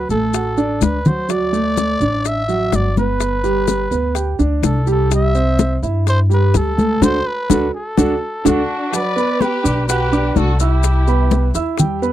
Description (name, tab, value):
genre	latin, Cuban son and guajira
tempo	126 BPM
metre	4/4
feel	straight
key	G major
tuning	A4 = 438 Hz
part	trumpet with cup mute	melody	0.0-11.5 s	F#4 to E5	-22 LUFS	equal	none
part	upright bass	bass	0.0-12.1 s	G1 to G2	-18 LUFS	equal	none
part	dark grand piano	arpeggios	0.1-12.1 s	F#3 to F#6	-19 LUFS	right 3 dB	none
part	bongos	percussion	0.1-12.0 s	none	-22 LUFS	left 12 dB	none
part	congas	percussion	0.1-12.1 s	none	-20 LUFS	left 3 dB	none
part	maracas	percussion	0.1-12.1 s	none	-28 LUFS	left 19 dB	none
part	dark symphonic violin section	second line	8.5-11.5 s	D4 to B4	-25 LUFS	left 2 dB	none
room	light reverb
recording	dry, close 1970s-style studio recording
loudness	-14 LUFS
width	side -12 dB against mid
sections	0.0-8.9 A section; 8.9-12.1 B section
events	drum fill 0.8-1.3; band accent 7.0-8.9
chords	0.0 D; 1.3 Dadd9; 3.2 G; 5.1 C; 7.0 D; 8.9 Gmaj7; 10.8 Cmaj7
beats	0.34 0.82 | 1.29 1.77 2.25 2.73 | 3.21 3.68 4.16 4.64 | 5.11 5.59 6.07 6.54 | 7.02 7.50 7.97 8.45 | 8.93 9.40 9.88 10.36 | 10.83 11.31 11.79